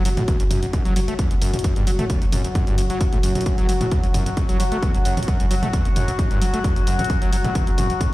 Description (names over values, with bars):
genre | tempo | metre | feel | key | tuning
driving peak-time techno | 132 BPM | 4/4 | straight | F# minor | A4 = 439 Hz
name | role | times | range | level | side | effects
overdriven acid bass | riff | 0.0-8.1 s | E2 to A3 | -26 LUFS | equal | distortion, analog chorus, sidechain pumping, digital delay
saturated sub bass | bass | 0.0-7.9 s | F#1 | -23 LUFS | equal | tube saturation, sidechain pumping, low-pass filter
analog drone | drone | 0.1-8.1 s | F#3 to F#4 | -26 LUFS | left 2 dB | chorus, sidechain pumping
punchy analog drum machine | drums | 0.1-8.1 s | hi-hat, toms | -29 LUFS | equal | sidechain pumping on hats, sidechain pumping on toms
electronic kick drum | drums | 0.3-8.1 s | none | -21 LUFS | equal | none
room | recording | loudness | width
digital ambience | played on a big sound system in a bare room, stone room reverb | -18 LUFS | side -17 dB against mid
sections
0.0-8.1 A section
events
none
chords
none